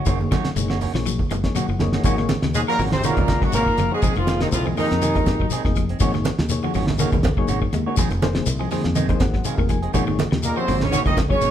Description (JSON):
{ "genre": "afrobeat", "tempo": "122 BPM", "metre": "4/4", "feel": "swing 54% on 16ths", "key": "Ab mixolydian", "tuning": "A4 = 440 Hz", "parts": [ { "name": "electric guitar at the edge of break-up", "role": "arpeggios", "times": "0.0-11.5 s", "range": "Db3 to Ab3", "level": "-29 LUFS", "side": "left 10 dB", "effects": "none" }, { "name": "semi-hollow electric guitar", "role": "stabs", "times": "0.0-11.5 s", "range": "Eb3 to Ab4", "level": "-29 LUFS", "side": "right 6 dB", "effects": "none" }, { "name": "bright reed electric piano", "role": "accompaniment", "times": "0.1-11.5 s", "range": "Bb3 to Ab5", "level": "-29 LUFS", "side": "left 5 dB", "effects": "fast tremolo" }, { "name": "fingered electric bass", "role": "bass", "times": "0.1-11.5 s", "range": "F1 to F2", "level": "-25 LUFS", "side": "equal", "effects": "none" }, { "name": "cloth-damped thuddy drum kit", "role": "drums", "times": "0.1-11.5 s", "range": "hi-hat, kick drum, snare drum", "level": "-23 LUFS", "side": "equal", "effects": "none" }, { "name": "shekere", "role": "percussion", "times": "0.1-11.5 s", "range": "none", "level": "-30 LUFS", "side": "left 5 dB", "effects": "none" }, { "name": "congas", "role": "percussion", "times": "0.2-11.3 s", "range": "none", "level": "-28 LUFS", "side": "right 5 dB", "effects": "none" }, { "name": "warm horn section", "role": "melody", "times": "2.5-5.7, 10.4-11.5 s", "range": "Eb4 to Eb5", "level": "-24 LUFS", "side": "equal", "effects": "none" }, { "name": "raspy alto saxophone", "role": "second line", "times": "2.5-5.7, 10.4-11.5 s", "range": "Eb3 to Eb4", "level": "-28 LUFS", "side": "right 4 dB", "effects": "none" }, { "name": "bright trombone section", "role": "second line", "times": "2.6-5.7, 10.4-11.5 s", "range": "Eb2 to Eb3", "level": "-32 LUFS", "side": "left 2 dB", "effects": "none" } ], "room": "moderate large studio reverb, RT60 1.3 s", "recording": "band playing live in one room", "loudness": "-18 LUFS", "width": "side -10 dB against mid", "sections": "0.0-2.0 A section; 2.0-11.5 B section", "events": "reed electric piano fill 1.3-2.0, 8.5-9.9; drum fill 1.6-2.0", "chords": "0.1 Gb6; 2.0 Ab9sus4; 4.0 Fm7; 6.0 Ab9sus4; 8.0 Fm7; 9.9 Ab9sus4", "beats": "| 0.07 0.56 1.06 1.55 | 2.05 2.54 3.04 3.54 | 4.03 4.52 5.02 5.51 | 6.00 6.50 6.99 7.48 | 7.97 8.47 8.96 9.45 | 9.94 10.44 10.93 11.42" }